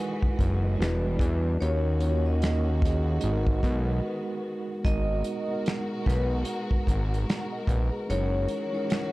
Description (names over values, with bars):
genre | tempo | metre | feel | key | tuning
lo-fi hip hop | 74 BPM | 4/4 | swing 59% on 16ths | G# minor | A4 = 440 Hz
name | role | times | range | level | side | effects
mellow tine electric piano | accompaniment | 0.0-9.1 s | G3 to G#5 | -32 LUFS | right 1 dB | medium stereo tremolo, cassette tape
warm studio string section | sustained chords | 0.0-9.1 s | B2 to D#5 | -38 LUFS | left 1 dB | none
fat analog bass | bass | 0.2-8.5 s | E1 to E2 | -26 LUFS | equal | tube saturation
warm soul drum kit | drums | 0.2-9.1 s | finger snaps, hi-hat, kick drum, snare drum | -28 LUFS | equal | none
vibraphone with medium hard mallets | melody | 1.6-9.1 s | B4 to D#5 | -35 LUFS | left 1 dB | tape echo
room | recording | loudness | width
small room ambience | dry, gritty hardware recording, cassette tape | -24 LUFS | side -19 dB against mid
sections
0.0-4.8 A section; 4.8-9.1 B section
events
break 4.0-4.8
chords
0.0 Emaj9; 0.8 Em7; 1.6 D#m7; 3.2 G#m9; 8.1 F#13